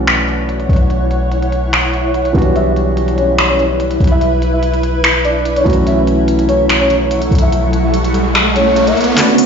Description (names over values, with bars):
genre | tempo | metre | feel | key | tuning
future bass | 145 BPM | 4/4 | half-time | unclear | A4 = 440 Hz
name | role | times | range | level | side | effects
dark grand piano | accompaniment | 0.0-9.5 s | D3 to F#4 | -20 LUFS | right 2 dB | tape echo
shimmering ambient pad | sustained chords | 0.0-9.5 s | B2 to D6 | -19 LUFS | left 1 dB | chorus, built-in reverb
warm 808-style bass | bass | 0.0-8.9 s | B1 | -16 LUFS | equal | tube saturation
pop drum kit | drums | 0.1-9.5 s | finger snaps, handclaps, hi-hat | -16 LUFS | equal | high-pass filter on hats, low-pass filter on hats, high-pass filter on snare, low-pass filter on snare
soft octave-layered synth lead | melody | 2.6-9.3 s | C#5 to E5 | -17 LUFS | equal | chorus, tremolo, ping-pong delay
riser | sound effects | 6.9-9.5 s | none | -16 LUFS | right 1 dB | none
supersaw chords | riff | 9.2-9.3 s | A3 to D5 | -16 LUFS | right 1 dB | low-pass filter
room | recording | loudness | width
moderate lush hall reverb, RT60 2.1 s | played on a big sound system in a bare room, stone room reverb, nothing above 7.6 kHz | -11 LUFS | side -6 dB against mid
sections
0.0-9.2 A section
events
filter sweep on ambient pad 0.0-9.2; riser 6.9-9.2, 9.2; drum fill 9.2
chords
0.0 Dmaj9/B; 2.3 Em7/B; 5.7 F#m7/B